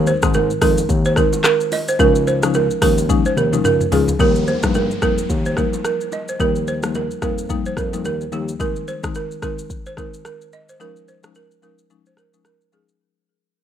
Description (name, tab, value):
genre	afrobeats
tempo	109 BPM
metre	4/4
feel	swing 58% on 16ths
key	unclear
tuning	A4 = 442 Hz
part	buzzing marimba with medium mallets	accompaniment	0.0-13.0 s	Eb3 to Eb4	-23 LUFS	left 9 dB	none
part	barky tine electric piano	bass	0.0-8.5 s	Db2 to Ab2	-22 LUFS	left 1 dB	none
part	balafon	riff	0.1-12.8 s	G4 to Eb5	-20 LUFS	right 6 dB	ping-pong delay
part	afro-pop drum kit	drums	0.1-13.0 s	handclaps, hi-hat, kick drum, rim click, shaker, toms	-21 LUFS	left 1 dB	none
part	bongos and congas	percussion	0.3-8.5 s	none	-33 LUFS	right 5 dB	none
part	downlifter	sound effects	4.2-8.6 s	none	-33 LUFS	right 1 dB	none
room	little or no reverb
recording	rough home demo mix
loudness	-16 LUFS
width	side -9 dB against mid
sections	0.0-4.2 A section; 4.2-13.0 B section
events	drum fill 3.1-4.2; fade-out 4.2-13.0; break 11.9-13.0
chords	0.0 Ab/Eb; 2.0 Dbadd9; 4.2 Ebadd9; 8.6 Ab/Eb; 10.8 Dbadd9